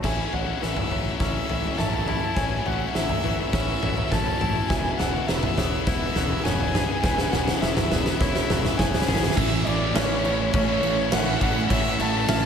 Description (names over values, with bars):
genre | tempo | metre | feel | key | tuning
post-rock | 103 BPM | 4/4 | straight | A major | A4 = 440 Hz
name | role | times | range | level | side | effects
rich violin | melody | 0.0-12.5 s | C#5 to A5 | -29 LUFS | equal | slapback echo, tape echo
icy glass pad | sustained chords | 0.0-12.5 s | B3 to E5 | -37 LUFS | equal | none
felt-muted upright piano | arpeggios | 0.0-12.5 s | B4 to E5 | -36 LUFS | right 4 dB | slapback echo, tape echo
twangy electric guitar | arpeggios | 0.0-12.5 s | A2 to G#4 | -35 LUFS | left 3 dB | lush chorus, slapback echo, tape echo
tight distorted guitar | riff | 0.0-12.5 s | A2 to E4 | -30 LUFS | left 11 dB | distortion
fuzz fingered electric bass | bass | 0.0-12.5 s | E1 to A1 | -29 LUFS | equal | overdrive
huge arena drum kit | drums | 0.0-12.4 s | crash cymbal, kick drum, snare drum, toms | -25 LUFS | equal | none
sludgy distorted guitar | riff | 9.4-12.5 s | A2 to E4 | -27 LUFS | right 10 dB | overdrive
room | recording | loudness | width
moderate lush hall reverb, RT60 2.8 s | big arena sound, lossy compression artefacts | -21 LUFS | side -7 dB against mid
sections
0.0-9.4 A section; 9.4-12.5 B section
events
build-up 0.0-9.4; drum fill 0.0-9.4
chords
0.0 A6; 4.7 Eadd9; 9.4 A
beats
| 0.04 0.62 1.21 1.79 | 2.37 2.95 3.54 4.12 | 4.71 5.29 5.87 6.46 | 7.04 7.63 8.21 8.79 | 9.38 9.96 10.54 11.13 | 11.71 12.29